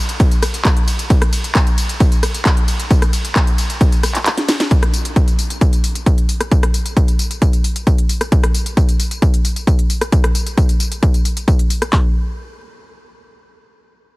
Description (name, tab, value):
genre	techno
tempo	133 BPM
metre	4/4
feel	straight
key	none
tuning	none
part	techno drum kit	drums	0.1-11.9 s	handclaps, hi-hat, ride cymbal, rim click, snare drum, tambourine	-20 LUFS	equal	overdrive, sidechain pumping on hats, sidechain pumping on perc, sidechain pumping on cymbals
part	punchy analog drum machine	drums	0.2-12.0 s	handclaps, kick drum	-14 LUFS	equal	none
room	digital ambience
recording	heavily compressed radio sound, multiband compression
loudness	-13 LUFS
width	side -22 dB against mid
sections	0.0-4.7 A section; 4.7-11.9 B section; 11.9-13.7 C section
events	drop 0.0-4.7; kick drops out 4.3-4.7; drum fill 4.4-4.7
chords	none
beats	0.20 0.65 | 1.10 1.55 2.00 2.46 | 2.91 3.36 3.81 4.26 | 4.71 5.16 5.61 6.06 | 6.51 6.97 7.42 7.87 | 8.32 8.77 9.22 9.67 | 10.12 10.57 11.03 11.48 | 11.93